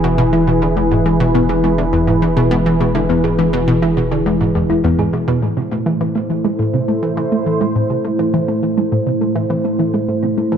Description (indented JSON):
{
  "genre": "ambient, sequencer-driven space music",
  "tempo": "103 BPM",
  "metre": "4/4",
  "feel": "straight",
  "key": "A harmonic minor",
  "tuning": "A4 = 440 Hz",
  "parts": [
    { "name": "sweeping resonant pad", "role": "sustained chords", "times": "0.0-10.6 s", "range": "A2 to C5", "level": "-17 LUFS", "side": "equal", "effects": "chorus" },
    { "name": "analog pluck", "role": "riff", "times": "0.0-10.6 s", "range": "E2 to A3", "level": "-18 LUFS", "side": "right 1 dB", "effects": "chorus, tape echo" },
    { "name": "round analog bass", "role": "bass", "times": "0.0-5.4 s", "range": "E1", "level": "-24 LUFS", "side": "equal", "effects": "none" },
    { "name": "thumb-piano-like synth pluck", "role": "arpeggios", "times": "0.3-10.6 s", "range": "G#3 to A4", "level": "-23 LUFS", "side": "moving between left 5 dB and right 1 dB", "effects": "chorus, auto-pan, tape echo" }
  ],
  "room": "wet plate reverb, RT60 2.5 s",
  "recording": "dark, warm production",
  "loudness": "-14 LUFS",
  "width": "side -8 dB against mid",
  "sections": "0.0-5.4 A section; 5.4-10.6 B section",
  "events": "none",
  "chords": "0.0 E; 5.4 Am",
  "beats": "0.18 | 0.77 1.35 1.93 2.51 | 3.10 3.68 4.26 4.84 | 5.43 6.01 6.59 7.17 | 7.76 8.34 8.92 9.50 | 10.09"
}